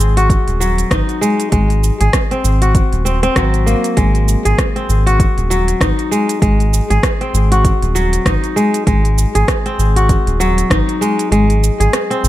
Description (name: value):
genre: organic downtempo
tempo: 98 BPM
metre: 4/4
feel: swing 58% on 16ths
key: Ab mixolydian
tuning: A4 = 440 Hz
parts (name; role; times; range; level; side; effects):
- kora; arpeggios; 0.0-12.3 s; Gb3 to Ab4; -16 LUFS; left 1 dB; ping-pong delay
- round analog bass; bass; 0.0-12.3 s; Eb1 to Ab1; -14 LUFS; equal; none
- deep house drum kit; drums; 0.0-12.3 s; hi-hat, rim click, shaker; -21 LUFS; right 2 dB; none
- electronic kick drum; drums; 0.3-10.8 s; none; -16 LUFS; equal; none
room: digital ambience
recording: none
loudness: -12 LUFS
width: side -14 dB against mid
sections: 0.0-12.3 A section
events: kick drops out 11.3-12.3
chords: 0.0 Ab7